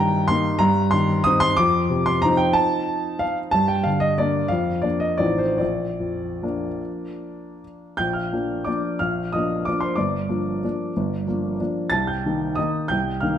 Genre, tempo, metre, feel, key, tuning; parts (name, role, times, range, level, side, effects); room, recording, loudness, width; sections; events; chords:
classical, piano waltz; 141-200 BPM; 3/4; rubato; Bb major; A4 = 440 Hz
warm upright piano; solo; 0.0-13.4 s; G1 to A6; -20 LUFS; equal
moderate recital hall reverb, RT60 1.4 s; dark, warm production; -20 LUFS; side -9 dB against mid
0.0-8.0 A section; 8.0-13.4 B section
0.0 Eb/G; 1.6 F7; 3.5 Gm; 4.5 Bb/F; 5.2 F7/A; 5.6 Bb; 10.0 Gm7; 11.9 Cm7